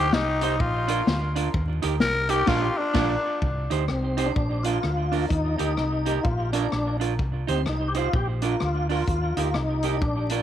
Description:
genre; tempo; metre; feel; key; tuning
ska; 127 BPM; 4/4; swing 61% on 8ths; unclear; A4 = 440 Hz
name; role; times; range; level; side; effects
growling tenor saxophone; melody; 0.0-3.4 s; D4 to Bb4; -25 LUFS; left 2 dB; tape echo
vintage hollow-body jazz guitar; accompaniment; 0.0-10.4 s; D4 to C5; -29 LUFS; right 8 dB; tape echo
hollow-body short-scale fingered electric bass; bass; 0.0-10.4 s; Bb1 to Eb2; -27 LUFS; equal; none
vintage drum kit; drums; 0.1-10.4 s; crash cymbal, hi-hat, kick drum, rim click, snare drum; -28 LUFS; left 2 dB; none
tonewheel organ; melody; 3.9-10.4 s; C4 to G4; -28 LUFS; left 2 dB; overdrive, chorus vibrato, slow rotary speaker
room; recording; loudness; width
moderate spring reverb, RT60 1.8 s, small room ambience; 1960s-style stereo, vinyl crackle; -22 LUFS; side -10 dB against mid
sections
0.0-3.4 A section; 3.4-10.4 B section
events
tenor saxophone solo 0.0-3.4; band accent 2.5-3.4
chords
0.0 Cm; 0.6 Bb; 1.5 Eb; 2.5 Bb; 3.4 Cm; 4.4 Bb; 5.3 Eb; 6.2 Bb; 7.2 Cm; 8.1 Bb; 9.1 Eb

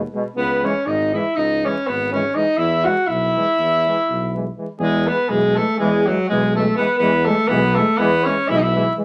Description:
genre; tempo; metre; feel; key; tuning
balkan folk; 245 BPM (eighths); 9/8; straight; E major; A4 = 440 Hz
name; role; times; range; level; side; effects
warm flugelhorn; melody; 0.0-8.9 s; F#4 to F#5; -23 LUFS; equal; none
warm alto saxophone; second line; 0.0-8.9 s; F#3 to F#4; -23 LUFS; equal; none
mellow tuba; bass; 0.0-8.9 s; G#1 to E2; -25 LUFS; equal; none
clear trombone; accompaniment; 0.1-9.0 s; B2 to E3; -30 LUFS; equal; none
mellow euphonium; accompaniment; 0.1-9.0 s; G#3; -28 LUFS; equal; none
room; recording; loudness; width
moderate studio reverb, RT60 0.5 s; vinyl crackle; -19 LUFS; mono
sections
0.0-4.8 A section; 4.8-9.0 B section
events
none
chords
0.4 C#m; 2.6 E

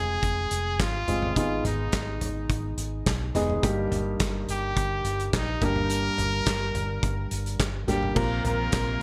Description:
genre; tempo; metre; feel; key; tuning
piano-driven pop; 106 BPM; 4/4; straight; Eb major; A4 = 439 Hz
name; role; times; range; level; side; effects
bright trumpet; melody; 0.0-9.0 s; Eb4 to Bb4; -32 LUFS; equal; none
warm concert grand piano; accompaniment; 0.0-9.0 s; G2 to Bb4; -33 LUFS; equal; none
vintage muted fingered electric bass; bass; 0.0-9.0 s; F1 to Cb2; -33 LUFS; equal; none
loose indie drum kit; drums; 0.2-8.9 s; crash cymbal, handclaps, hi-hat, kick drum, snare drum, toms; -31 LUFS; equal; gated reverb
muted symphonic string section; sustained chords; 8.2-9.0 s; C3 to F4; -40 LUFS; equal; none
room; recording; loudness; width
moderate plate reverb, RT60 1.4 s, small room ambience; bright 1980s-style digital production; -27 LUFS; mono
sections
0.0-8.2 A section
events
none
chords
0.0 Fm; 1.4 Abm; 3.6 Eb/G; 5.6 Gm; 8.2 Bbsus2

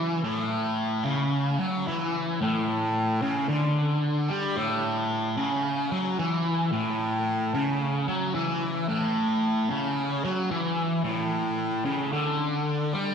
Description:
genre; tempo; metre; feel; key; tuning
rock; 111 BPM; 4/4; straight; A mixolydian; A4 = 442 Hz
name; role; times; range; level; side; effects
fuzz guitar; solo; 0.0-13.1 s; A2 to G3; -24 LUFS; equal; distortion, phaser, analog delay
room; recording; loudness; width
wet lush hall reverb, RT60 2.8 s; dreamy mix soaked in reverb; -24 LUFS; side -7 dB against mid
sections
0.0-13.1 A section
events
none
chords
none

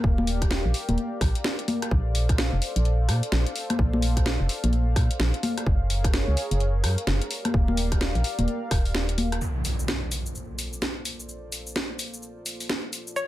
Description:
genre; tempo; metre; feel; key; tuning
UK garage, two-step garage; 128 BPM; 4/4; swing 62% on 16ths; Bb major; A4 = 440 Hz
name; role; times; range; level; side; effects
warm analog pad; sustained chords; 0.0-13.3 s; Gb3 to F5; -35 LUFS; left 1 dB; chorus, sidechain pumping
organ-like FM bass; bass; 0.0-9.4 s; Eb1 to Bb2; -24 LUFS; equal; none
electronic kick drum; drums; 0.0-8.8 s; none; -24 LUFS; equal; none
house drum kit; drums; 0.2-13.3 s; congas, hi-hat, rim click, shaker, snare drum; -28 LUFS; left 1 dB; none
impact; sound effects; 9.4-11.3 s; none; -32 LUFS; equal; none
string-like resonator pluck; melody; 13.2-13.3 s; Db5; -25 LUFS; left 2 dB; chorus
room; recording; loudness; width
digital ambience; none; -23 LUFS; side -15 dB against mid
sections
0.0-9.4 A section; 9.4-13.3 B section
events
impact 9.4-11.3; filter sweep on analog synth pad 9.4-13.3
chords
0.0 Ebmaj9; 1.9 Bbmaj9; 5.7 Gbmaj9; 7.3 Ebmaj9; 9.4 Bbmaj9

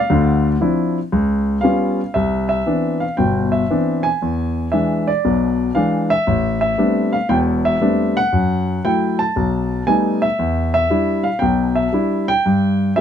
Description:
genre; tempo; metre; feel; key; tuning
solo jazz; 116 BPM; 4/4; swing 69% on 8ths; unclear; A4 = 440 Hz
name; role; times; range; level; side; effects
warm grand piano; solo; 0.0-13.0 s; E1 to A5; -15 LUFS; left 1 dB; none
room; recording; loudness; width
little or no reverb; close, detailed microphones; -15 LUFS; side -8 dB against mid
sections
0.0-2.1 A section; 2.1-13.0 B section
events
grand piano solo 0.0-2.1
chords
0.1 Dm9; 1.1 Db7#11; 2.1 Cmaj9; 4.2 E7; 6.3 Am11; 8.3 F#m7; 9.4 B7b13; 10.4 Em7; 12.4 N.C.

